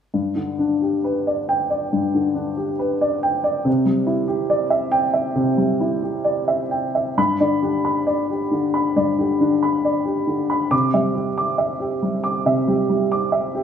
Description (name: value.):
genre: neoclassical minimalist piano.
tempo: 68 BPM.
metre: 4/4.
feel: rubato.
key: G major.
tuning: A4 = 442 Hz.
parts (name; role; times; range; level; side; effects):
warm upright piano; solo; 0.1-13.6 s; G2 to D6; -18 LUFS; equal; none.
room: wet recital hall reverb, RT60 1.4 s.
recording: recorded in a church or concert hall.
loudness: -18 LUFS.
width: side -8 dB against mid.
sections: 0.1-7.2 A section; 7.2-13.6 B section.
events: none.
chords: 0.1 G; 3.7 Cadd9; 7.2 G; 10.7 Cadd9.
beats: | 0.13 1.04 1.92 2.81 | 3.67 4.50 5.37 6.25 | 7.17 8.07 8.96 9.84 | 10.72 11.59 12.46 13.33.